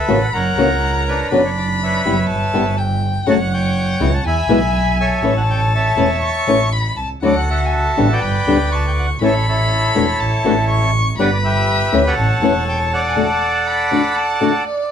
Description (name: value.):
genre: tango.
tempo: 122 BPM.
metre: 4/4.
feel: rubato.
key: D major.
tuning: A4 = 438 Hz.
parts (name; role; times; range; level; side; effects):
bandoneon; melody; 0.0-14.6 s; D4 to B5; -20 LUFS; equal; tape echo.
warm violin; second line; 0.0-14.9 s; D5 to C#6; -22 LUFS; left 2 dB; none.
warm double bass; bass; 0.0-13.1 s; E1 to E2; -19 LUFS; right 2 dB; none.
flamenco guitar; accompaniment; 0.1-14.5 s; B2 to G4; -16 LUFS; left 3 dB; none.
room: moderate studio ambience, RT60 0.5 s.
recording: band playing live in one room.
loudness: -14 LUFS.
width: side -8 dB against mid.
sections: 0.0-14.9 A section.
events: none.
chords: 0.3 F#; 1.3 Bmadd9/F#; 2.3 Em/G; 3.3 F#m; 4.2 E; 5.2 A; 7.2 Dadd9; 8.2 G; 9.2 A; 10.2 Dsus2/A (rootless); 11.2 G; 12.2 A; 13.2 D.